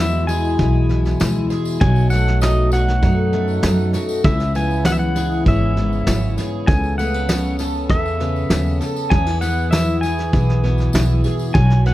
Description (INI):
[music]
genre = acoustic folk duo or small band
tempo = 99 BPM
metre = 4/4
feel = straight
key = E major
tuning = A4 = 440 Hz
[part]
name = pedal steel guitar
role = melody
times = 0.0-11.9 s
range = D#5 to G#5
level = -25 LUFS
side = equal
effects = plate reverb
[part]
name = fingerpicked steel-string acoustic guitar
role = accompaniment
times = 0.0-11.9 s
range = E2 to A4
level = -22 LUFS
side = left 2 dB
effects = none
[part]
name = hand-pumped harmonium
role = sustained chords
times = 0.0-11.5 s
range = B2 to A4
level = -31 LUFS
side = left 3 dB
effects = none
[part]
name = picked twelve-string acoustic guitar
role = arpeggios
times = 0.0-11.9 s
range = E3 to A4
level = -28 LUFS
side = right 6 dB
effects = none
[part]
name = upright bass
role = bass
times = 0.0-11.9 s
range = G#1 to F#2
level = -18 LUFS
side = equal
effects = none
[part]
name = soft brush drum kit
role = drums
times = 0.3-11.9 s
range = kick drum, snare drum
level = -20 LUFS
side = equal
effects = none
[part]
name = tambourine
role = percussion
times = 0.3-11.5 s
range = none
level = -36 LUFS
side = left 3 dB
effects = none
[sound]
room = light reverb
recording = dark, warm production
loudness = -15 LUFS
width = side -15 dB against mid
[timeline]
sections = 0.0-11.9 A section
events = none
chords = 0.0 E; 1.8 B7; 4.2 C#m7; 6.7 Aadd9/C#; 9.1 E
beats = 0.59 1.20 | 1.81 2.42 3.03 3.64 | 4.25 4.86 5.46 6.07 | 6.68 7.29 7.90 8.51 | 9.12 9.72 10.33 10.94 | 11.55